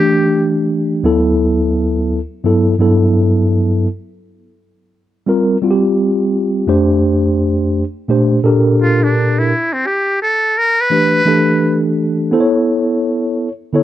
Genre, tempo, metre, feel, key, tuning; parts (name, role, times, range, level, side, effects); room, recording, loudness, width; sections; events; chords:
hip hop; 85 BPM; 4/4; swing 62% on 16ths; A4 = 440 Hz
trumpet with metal mute; melody; 0.0-0.5, 8.8-11.9 s; C4 to B4; -15 LUFS; equal
mellow tine electric piano; accompaniment; 0.0-13.8 s; D2 to C#5; -12 LUFS; equal; medium stereo tremolo
moderate booth ambience, RT60 0.2 s; worn, warbling old tape, cassette tape, warbly pitch drift; -12 LUFS; side -12 dB against mid
0.0-13.8 A section
0.0 A7sus4; 1.0 Dadd9; 2.4 Gmaj9; 5.3 C7sus4; 6.7 F69; 8.1 Bbmaj7; 10.9 Em7; 12.3 A